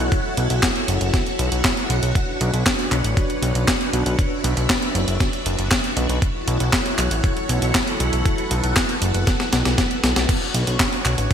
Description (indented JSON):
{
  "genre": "italo disco",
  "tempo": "118 BPM",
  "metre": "4/4",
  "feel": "straight",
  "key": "B minor",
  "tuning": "A4 = 440 Hz",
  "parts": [
    { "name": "string machine, full ensemble", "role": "sustained chords", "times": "0.0-11.3 s", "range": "D4 to F#5", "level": "-24 LUFS", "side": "equal", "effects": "ensemble chorus" },
    { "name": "fat analog bass", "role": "bass", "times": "0.0-11.3 s", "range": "F#1 to B1", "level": "-22 LUFS", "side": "equal", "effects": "none" },
    { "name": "clean 12-bit digital drum machine", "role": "drums", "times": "0.1-11.3 s", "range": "crash cymbal, handclaps, hi-hat, snare drum", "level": "-22 LUFS", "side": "equal", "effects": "overdrive, gated reverb" },
    { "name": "electronic kick drum", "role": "drums", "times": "0.1-11.3 s", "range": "none", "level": "-22 LUFS", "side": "equal", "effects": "overdrive" }
  ],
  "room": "light reverb",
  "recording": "bright 1980s-style digital production",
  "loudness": "-18 LUFS",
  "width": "side -8 dB against mid",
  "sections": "0.0-10.3 A section; 10.3-11.3 A section",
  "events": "drum fill 9.3-10.3",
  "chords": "0.0 F#m7; 2.2 Bmadd9; 6.2 F#m7; 10.3 Bmadd9",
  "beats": "| 0.12 0.63 1.14 1.65 | 2.15 2.66 3.17 3.68 | 4.19 4.70 5.20 5.71 | 6.22 6.73 7.24 7.75 | 8.26 8.76 9.27 9.78 | 10.29 10.80 11.31"
}